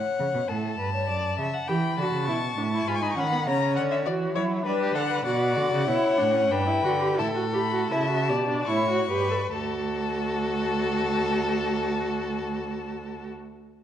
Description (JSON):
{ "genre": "classical, baroque-style fugue for string quartet", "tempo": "67-102 BPM", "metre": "3/4", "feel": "straight", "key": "D major from 5.3 s", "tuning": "A4 = 440 Hz", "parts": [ { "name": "rich violin", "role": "melody", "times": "0.0-13.3 s", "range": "B4 to C#6", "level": "-30 LUFS", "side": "left 7 dB", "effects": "none" }, { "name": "rich violin", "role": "second line", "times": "0.0-13.3 s", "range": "G4 to A5", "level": "-29 LUFS", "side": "left 3 dB", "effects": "none" }, { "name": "rich cello", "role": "bass", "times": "0.2-13.3 s", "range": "D2 to G3", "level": "-29 LUFS", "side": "right 4 dB", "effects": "none" }, { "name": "rich viola", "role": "accompaniment", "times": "1.7-13.3 s", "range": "B3 to A4", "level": "-28 LUFS", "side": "right 1 dB", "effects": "none" } ], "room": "moderate recital hall reverb, RT60 1.4 s", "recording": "worn, warbling old tape, cassette tape, warbly pitch drift", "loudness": "-23 LUFS", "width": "side -10 dB against mid", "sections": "0.0-9.5 A section; 9.5-13.8 B section", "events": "slowing down 4.4-9.5", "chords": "0.0 F#m; 1.1 D/F#; 1.7 Em; 2.9 C#7(no3)/G#; 3.5 F#/C#; 4.7 G; 5.3 Bm; 6.5 Em7/G; 7.2 A7sus4; 8.7 A7; 9.5 D", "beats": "0.49 1.09 | 1.68 2.28 2.87 | 3.46 4.06 4.66 | 5.26 5.88 6.52 | 7.20 7.92 8.69 | 9.54 10.43 11.32 | 12.21 13.10" }